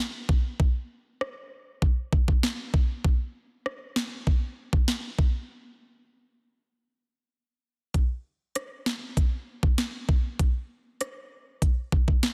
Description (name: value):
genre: dancehall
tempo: 98 BPM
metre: 4/4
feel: straight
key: none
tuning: none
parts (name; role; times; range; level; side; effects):
- island pop drum kit; drums; 0.3-12.3 s; hi-hat, kick drum, rim click, snare drum; -26 LUFS; equal; overdrive
room: digital ambience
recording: dense, heavily limited modern master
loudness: -28 LUFS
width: mono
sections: 0.0-7.9 A section; 7.9-12.3 B section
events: break 5.5-7.9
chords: none